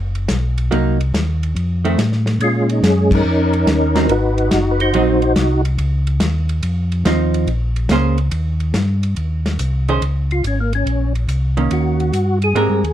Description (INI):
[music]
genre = soul jazz organ trio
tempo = 142 BPM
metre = 4/4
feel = swing 68% on 8ths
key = Ab mixolydian, Eb mixolydian from 9.2 s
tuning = A4 = 440 Hz
[part]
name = mellow tonewheel organ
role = bass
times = 0.0-12.9 s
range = F#1 to Bb2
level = -17 LUFS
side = equal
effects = slow rotary speaker
[part]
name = warm soul drum kit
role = drums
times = 0.2-12.9 s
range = crash cymbal, hi-hat, kick drum, ride cymbal, snare drum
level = -22 LUFS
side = left 1 dB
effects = none
[part]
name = vintage hollow-body jazz guitar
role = accompaniment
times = 0.7-12.8 s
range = Eb3 to C5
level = -18 LUFS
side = right 3 dB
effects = none
[part]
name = percussive tonewheel organ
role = melody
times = 2.4-5.6, 10.3-12.9 s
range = Ab3 to C5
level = -17 LUFS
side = equal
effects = slow rotary speaker, chorus vibrato
[sound]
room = little or no reverb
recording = dark, warm production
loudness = -15 LUFS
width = side -11 dB against mid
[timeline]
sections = 0.0-9.2 A section; 9.2-12.9 B section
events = band accent 3.0; tonewheel organ solo 9.2-12.9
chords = 0.0 B5; 0.7 Cm7b5; 1.6 F7; 2.4 Bbm11; 4.1 Ab7; 5.8 Dbmaj9; 7.5 Bbm9; 8.3 Eb; 9.2 Eb7sus4; 10.9 Bbmadd9; 11.7 Eb7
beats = 0.29 | 0.71 1.14 1.56 1.98 | 2.40 2.83 3.25 3.67 | 4.09 4.52 4.94 5.36 | 5.79 6.21 6.63 7.05 | 7.48 7.90 8.32 8.74 | 9.17 9.59 10.01 10.44 | 10.86 11.28 11.71 12.13 | 12.55